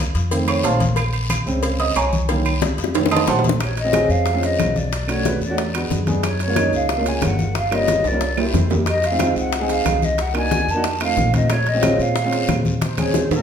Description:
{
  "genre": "Afro-Cuban jazz",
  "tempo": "182 BPM",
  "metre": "4/4",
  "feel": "straight",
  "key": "Bb minor",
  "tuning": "A4 = 441 Hz",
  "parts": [
    { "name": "upright bass", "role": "bass", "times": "0.0-13.4 s", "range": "G1 to Bb2", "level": "-23 LUFS", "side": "equal", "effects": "none" },
    { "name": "congas", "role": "percussion", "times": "0.1-13.4 s", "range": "none", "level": "-26 LUFS", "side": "left 2 dB", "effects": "none" },
    { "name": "cowbell and bongos", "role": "percussion", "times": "0.1-13.3 s", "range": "none", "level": "-26 LUFS", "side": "left 6 dB", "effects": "none" },
    { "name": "guiro", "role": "percussion", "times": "0.2-13.4 s", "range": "none", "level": "-34 LUFS", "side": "left 5 dB", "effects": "none" },
    { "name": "maracas", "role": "percussion", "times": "0.2-13.4 s", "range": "none", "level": "-37 LUFS", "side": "right 4 dB", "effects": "none" },
    { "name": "warm upright piano", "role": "accompaniment", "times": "0.3-13.4 s", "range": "Db3 to Eb6", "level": "-22 LUFS", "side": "right 2 dB", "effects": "none" },
    { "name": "agogo bells and timbales", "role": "percussion", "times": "0.3-13.4 s", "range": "none", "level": "-28 LUFS", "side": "right 7 dB", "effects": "none" },
    { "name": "claves", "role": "percussion", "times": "0.5-13.1 s", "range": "none", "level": "-34 LUFS", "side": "right 4 dB", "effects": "none" },
    { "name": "breathy mellow jazz flute", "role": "melody", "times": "3.6-13.4 s", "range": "Bb4 to A5", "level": "-22 LUFS", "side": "equal", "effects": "none" }
  ],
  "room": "wet large studio reverb, RT60 0.8 s",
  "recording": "band playing live in one room",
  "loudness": "-17 LUFS",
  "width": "side -8 dB against mid",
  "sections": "0.0-3.6 A section; 3.6-13.4 B section",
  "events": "upright piano solo 0.0-3.6; drum fill 2.6-3.6, 8.0-8.9, 12.8-13.4",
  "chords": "0.3 F7; 1.0 Bbm7; 2.3 Cm7b5; 2.9 F7b9; 3.6 Bbm7; 4.9 Bm7; 5.6 E9; 6.2 Gbmaj7; 7.6 Gm7b5; 8.2 C7; 8.9 Fm7; 10.2 Cm7b5; 10.8 F7; 11.5 Bbm7"
}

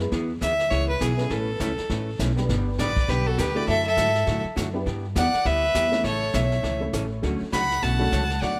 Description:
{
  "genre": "country, western swing",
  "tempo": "203 BPM",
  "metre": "4/4",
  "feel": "swing 60% on 8ths",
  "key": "D major",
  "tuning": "A4 = 440 Hz",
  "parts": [
    { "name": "honky-tonk upright piano", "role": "accompaniment", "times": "0.0-8.1 s", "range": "G3 to C#5", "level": "-34 LUFS", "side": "equal", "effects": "none" },
    { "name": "upright bass", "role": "bass", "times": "0.0-8.6 s", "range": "G1 to A2", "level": "-29 LUFS", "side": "equal", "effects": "none" },
    { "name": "vintage brush drum kit", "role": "drums", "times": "0.0-8.6 s", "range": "brushed snare drum, hi-hat, kick drum, snare drum", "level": "-34 LUFS", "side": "equal", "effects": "none" },
    { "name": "archtop guitar, miked and amplified", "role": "accompaniment", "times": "0.1-8.6 s", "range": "B2 to B4", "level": "-34 LUFS", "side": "equal", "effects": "none" },
    { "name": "clear fiddle", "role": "melody", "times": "0.4-8.6 s", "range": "G#4 to B5", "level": "-28 LUFS", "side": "equal", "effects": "none" },
    { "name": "clear fiddle", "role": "second line", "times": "2.8-8.6 s", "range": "F#4 to F#5", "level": "-34 LUFS", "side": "equal", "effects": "none" }
  ],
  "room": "light reverb",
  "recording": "none",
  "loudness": "-24 LUFS",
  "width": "mono",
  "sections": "0.0-8.6 A section",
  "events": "none",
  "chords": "0.1 E; 1.3 Aadd9; 2.5 G; 3.7 Dadd9/F#; 4.9 G6; 6.0 A; 7.2 Dmaj7"
}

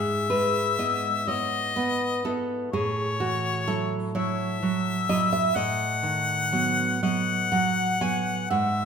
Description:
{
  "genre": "romantic duo for harmonica and classical guitar",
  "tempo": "42 BPM (dotted quarters)",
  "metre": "6/8",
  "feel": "rubato",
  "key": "unclear",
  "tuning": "A4 = 440 Hz",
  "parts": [
    { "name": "bright harmonica", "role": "melody", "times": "0.0-8.8 s", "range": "C#5 to F#5", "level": "-27 LUFS", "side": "left 6 dB", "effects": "none" },
    { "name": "nylon-string guitar", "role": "accompaniment", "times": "0.0-8.8 s", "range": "G#2 to G#5", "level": "-26 LUFS", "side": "right 3 dB", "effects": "none" }
  ],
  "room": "wet recital hall reverb, RT60 1.6 s",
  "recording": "minimal, uncompressed stereo recording",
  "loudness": "-23 LUFS",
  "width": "side -6 dB against mid",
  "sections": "0.0-8.8 A section",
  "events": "none",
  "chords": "0.0 E/G#; 2.7 F#m7/A; 5.6 B7/A"
}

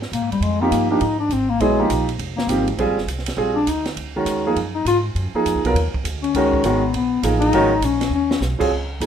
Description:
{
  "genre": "modal jazz",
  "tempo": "202 BPM",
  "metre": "4/4",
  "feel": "swing 63% on 8ths",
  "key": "unclear",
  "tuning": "A4 = 444 Hz",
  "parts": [
    { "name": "upright bass", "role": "bass", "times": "0.0-9.1 s", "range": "F1 to Bb2", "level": "-25 LUFS", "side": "right 1 dB", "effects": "none" },
    { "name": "open jazz drum kit", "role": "drums", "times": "0.0-9.1 s", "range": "crash cymbal, hi-hat, kick drum, ride cymbal, snare drum", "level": "-30 LUFS", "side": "right 3 dB", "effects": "none" },
    { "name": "mellow bass clarinet", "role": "second line", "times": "0.1-8.4 s", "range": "G3 to F4", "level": "-20 LUFS", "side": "left 5 dB", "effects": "none" },
    { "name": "warm grand piano", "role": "accompaniment", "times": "0.6-9.1 s", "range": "Eb3 to Bb4", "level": "-20 LUFS", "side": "right 3 dB", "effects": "none" }
  ],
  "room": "light reverb",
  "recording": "minimal, uncompressed stereo recording",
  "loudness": "-17 LUFS",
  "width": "side -8 dB against mid",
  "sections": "0.0-8.7 A section",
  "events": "bass clarinet solo 0.0-8.7; drum fill 8.1",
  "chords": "0.0 Bb13sus4; 4.0 Dbsus4"
}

